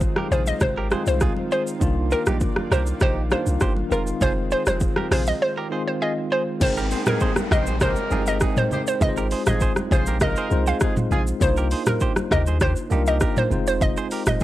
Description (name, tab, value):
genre	afrobeats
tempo	100 BPM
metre	4/4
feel	straight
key	F dorian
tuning	A4 = 440 Hz
part	bell-like tine electric piano	accompaniment	0.0-14.4 s	Eb3 to G5	-28 LUFS	left 1 dB	medium stereo tremolo
part	lush unison pad	sustained chords	0.0-6.6 s	Eb3 to D5	-35 LUFS	equal	chorus
part	punchy sub bass	bass	0.0-14.4 s	F1 to Eb2	-24 LUFS	equal	none
part	afro-pop drum kit	drums	0.0-14.4 s	crash cymbal, hi-hat, kick drum, rim click, shaker, toms	-23 LUFS	equal	none
part	direct-recorded clean electric guitar	riff	0.2-14.2 s	Eb4 to C5	-32 LUFS	right 5 dB	analog delay
part	congas	percussion	0.2-14.4 s	none	-32 LUFS	left 1 dB	none
part	hollow square pluck	melody	0.3-14.4 s	Bb4 to F5	-26 LUFS	equal	chorus
part	downlifter	sound effects	6.6-11.4 s	none	-34 LUFS	left 2 dB	none
part	mellow horn section	second line	7.1-11.2 s	C4 to C5	-30 LUFS	equal	analog delay
room	digital ambience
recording	dry, gritty hardware recording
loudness	-19 LUFS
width	side -14 dB against mid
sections	0.0-6.6 A section; 6.6-14.4 B section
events	break 5.4-6.6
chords	0.0 Fm7/Ab; 1.8 Cm11; 3.9 Fm7; 6.6 Abmaj9; 9.0 Fm7/Ab; 11.4 Cm11; 13.5 Fm7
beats	0.01 0.61 1.21 | 1.81 2.41 3.01 3.61 | 4.21 4.81 5.41 6.01 | 6.61 7.21 7.81 8.41 | 9.01 9.61 10.21 10.81 | 11.41 12.01 12.61 13.21 | 13.81 14.41